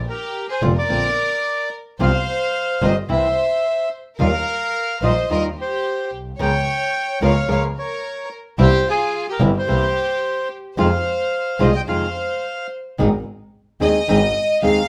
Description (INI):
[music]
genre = tango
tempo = 109 BPM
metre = 4/4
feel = rubato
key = F minor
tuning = A4 = 439 Hz
[part]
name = clear double bass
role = bass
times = 0.0-14.9 s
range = F1 to F2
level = -23 LUFS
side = equal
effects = none
[part]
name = bandoneon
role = melody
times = 0.1-12.7 s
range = Ab4 to G5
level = -24 LUFS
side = equal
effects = none
[part]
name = warm studio violin section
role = second line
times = 0.1-14.9 s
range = F4 to F5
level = -27 LUFS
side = equal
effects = none
[part]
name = nylon-string guitar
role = accompaniment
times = 0.6-14.8 s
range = C3 to Bb4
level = -23 LUFS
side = equal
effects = none
[sound]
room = moderate studio reverb, RT60 0.8 s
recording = none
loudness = -20 LUFS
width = mono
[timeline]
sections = 0.0-13.0 A section; 13.0-14.9 B section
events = violin section solo 13.0-14.9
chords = 0.0 Bbadd9; 2.0 C7sus4; 3.1 C7; 4.2 Ebadd9; 6.4 Bbm/Db; 8.6 C7; 10.8 Fm7; 13.0 Ab